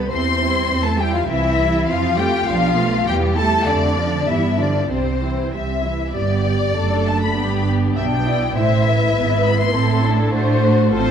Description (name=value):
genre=quick classical-period movement for string orchestra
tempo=100 BPM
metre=2/4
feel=rubato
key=C major, G major from 6.2 s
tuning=A4 = 440 Hz
part: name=dark studio violin section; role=second line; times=0.0-11.1 s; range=C4 to E5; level=-23 LUFS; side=left 2 dB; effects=none
part: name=rich studio viola section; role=accompaniment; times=0.0-11.1 s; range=D3 to G4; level=-24 LUFS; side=right 2 dB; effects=none
part: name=rich studio cello section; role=bass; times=0.0-11.1 s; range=F#2 to C4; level=-23 LUFS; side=right 3 dB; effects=none
part: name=warm studio double bass section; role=bass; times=0.0-11.1 s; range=F#1 to A2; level=-22 LUFS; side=right 2 dB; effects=none
part: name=rich studio violin section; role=melody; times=0.1-11.1 s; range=C5 to C6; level=-22 LUFS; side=left 6 dB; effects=none
room=wet scoring stage reverb, RT60 1.9 s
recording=dark, warm production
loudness=-16 LUFS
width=side -8 dB against mid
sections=0.0-6.2 A section; 6.2-11.1 B section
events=none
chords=0.1 C/E; 1.3 C; 1.9 F; 2.5 Bm7b5; 3.1 Em; 3.7 Dm/F; 4.3 G7; 4.9 C; 6.2 G; 6.8 D/F#; 7.4 G; 8.6 Am; 9.2 E/G#; 9.8 Am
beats=| 0.12 0.70 | 1.29 1.88 | 2.47 3.07 | 3.67 4.28 | 4.90 5.53 | 6.16 6.76 | 7.37 7.97 | 8.57 9.16 | 9.75 10.34 | 10.92